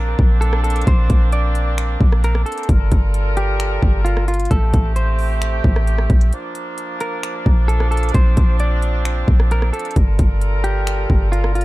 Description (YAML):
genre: hip hop, atmospheric cloud-rap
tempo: 132 BPM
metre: 4/4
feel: half-time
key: Bb major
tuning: A4 = 440 Hz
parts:
  - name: semi-hollow electric guitar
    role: melody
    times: 0.0-11.6 s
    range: F4 to D5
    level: -26 LUFS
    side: equal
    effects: ping-pong delay
  - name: warm woodwind section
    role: sustained chords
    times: 0.0-11.6 s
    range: F3 to Bb4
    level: -26 LUFS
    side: right 2 dB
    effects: sidechain pumping
  - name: clean 808-style bass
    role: bass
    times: 0.0-11.6 s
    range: G1 to Bb1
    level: -17 LUFS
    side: equal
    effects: none
  - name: trap drum kit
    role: drums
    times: 0.2-11.6 s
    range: finger snaps, hi-hat, kick drum, rim click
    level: -18 LUFS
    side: equal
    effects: none
room: digital ambience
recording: dark, warm production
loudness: -14 LUFS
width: side -18 dB against mid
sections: 0.0-11.6 A section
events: break 6.3-7.2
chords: 0.0 Bbadd9; 2.7 Gm9; 4.5 Am7; 6.3 Bbadd9; 10.0 Gm9